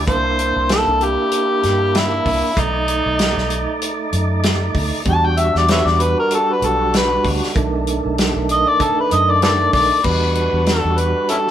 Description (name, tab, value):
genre	straight-eighth soul blues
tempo	96 BPM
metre	4/4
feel	swing 56% on 16ths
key	E minor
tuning	A4 = 440 Hz
part	tonewheel organ	accompaniment	0.0-11.5 s	D#3 to D5	-22 LUFS	right 3 dB	overdrive, fast rotary speaker
part	vintage muted fingered electric bass	bass	0.0-11.1 s	B1 to G2	-21 LUFS	equal	none
part	overdriven harmonica	melody	0.1-11.5 s	C#4 to A5	-17 LUFS	left 1 dB	none
part	warm soul drum kit	drums	0.1-11.5 s	crash cymbal, hi-hat, kick drum, snare drum	-21 LUFS	equal	none
room	moderate stone room reverb, RT60 1.2 s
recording	band playing live in one room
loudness	-14 LUFS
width	side -10 dB against mid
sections	0.0-10.1 A section; 10.1-11.5 B section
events	harmonica solo 0.0-10.1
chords	0.1 C7; 2.6 B7#9; 5.1 Em7; 7.6 B7#9; 10.1 Em7